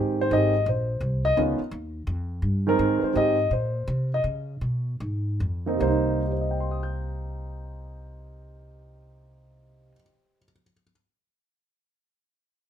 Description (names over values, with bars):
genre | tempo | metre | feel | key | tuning
jazz piano trio | 144-170 BPM | 4/4 | swing 64% on 8ths | C minor | A4 = 439 Hz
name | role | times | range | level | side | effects
warm grand piano | melody | 0.0-10.9 s | C3 to G6 | -24 LUFS | right 1 dB | none
upright bass | bass | 0.0-9.9 s | Ab1 to Db3 | -28 LUFS | equal | none
room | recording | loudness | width
moderate studio reverb, RT60 0.8 s | none | -23 LUFS | side -9 dB against mid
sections
0.0-5.8 A section; 5.8-9.1 B section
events
slowing down 2.8-5.8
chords
0.0 Abmaj7; 1.4 Dbadd9; 2.8 Ab; 4.2 Db7; 5.8 Cm7